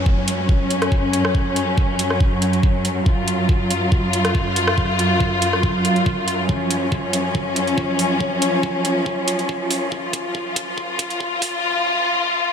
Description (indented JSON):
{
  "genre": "heavy wobble dubstep",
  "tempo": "140 BPM",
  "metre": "4/4",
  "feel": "half-time",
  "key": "unclear",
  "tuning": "A4 = 440 Hz",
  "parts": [
    { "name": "clear symphonic string section", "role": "sustained chords", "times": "0.0-12.5 s", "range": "F#2 to E#4", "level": "-19 LUFS", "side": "equal", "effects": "sidechain pumping" },
    { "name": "electronic kick drum", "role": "drums", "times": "0.1-11.5 s", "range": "none", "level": "-19 LUFS", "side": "equal", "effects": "none" },
    { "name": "dubstep drum kit", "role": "drums", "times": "0.3-11.5 s", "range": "hi-hat, rim click", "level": "-26 LUFS", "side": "right 1 dB", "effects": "high-pass filter on hats, high-pass filter on snare, high-pass filter on toms" }
  ],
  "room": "moderate huge ambient reverb, RT60 8.3 s",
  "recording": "dreamy mix soaked in reverb, high-pass filter",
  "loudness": "-17 LUFS",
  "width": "side -7 dB against mid",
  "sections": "0.0-12.5 A section",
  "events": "build-up 0.0-12.5; filter sweep 0.0-12.5; drum fill 6.5-11.6",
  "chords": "0.0 F#5",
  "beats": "0.06 0.49 0.92 | 1.35 1.78 2.21 2.63 | 3.06 3.49 3.92 4.35 | 4.78 5.21 5.63 6.06 | 6.49 6.92 7.35 7.78 | 8.21 8.63 9.06 9.49 | 9.92 10.35 10.78 11.21 | 11.63 12.06 12.49"
}